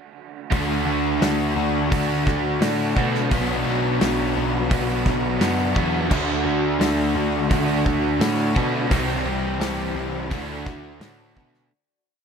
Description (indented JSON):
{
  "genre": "rock, shoegaze and dream pop",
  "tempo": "86 BPM",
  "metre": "4/4",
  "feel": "straight",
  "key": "D major",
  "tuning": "A4 = 440 Hz",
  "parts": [
    { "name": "glassy FM pad", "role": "sustained chords", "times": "1.2-11.7 s", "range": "E4 to C#6", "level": "-32 LUFS", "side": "left 1 dB", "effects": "ensemble chorus, built-in reverb, phaser" },
    { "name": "crunchy overdriven guitar", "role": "riff", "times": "0.5-11.7 s", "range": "B2 to G4", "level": "-26 LUFS", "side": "left 12 dB", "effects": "lush chorus" },
    { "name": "crunchy overdriven guitar", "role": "riff", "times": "0.5-11.7 s", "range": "B2 to G4", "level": "-26 LUFS", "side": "right 12 dB", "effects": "reverse reverb" },
    { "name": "overdriven electric guitar", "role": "riff", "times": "0.5-11.7 s", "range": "B2 to D4", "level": "-28 LUFS", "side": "right 1 dB", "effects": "none" },
    { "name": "growling picked electric bass", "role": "bass", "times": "0.5-11.7 s", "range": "B1 to B2", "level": "-27 LUFS", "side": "equal", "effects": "overdrive" },
    { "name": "loose indie drum kit", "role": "drums", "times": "0.5-11.6 s", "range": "crash cymbal, hi-hat, kick drum, snare drum", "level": "-25 LUFS", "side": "equal", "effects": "none" }
  ],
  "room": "light reverb",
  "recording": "none",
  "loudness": "-19 LUFS",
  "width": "side -6 dB against mid",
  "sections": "0.5-11.7 A section",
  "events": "fade-out 8.9-11.7",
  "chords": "0.5 Dmaj7; 3.3 Bm; 6.1 Dmaj7; 8.9 Cmaj7; 10.3 Dmaj7"
}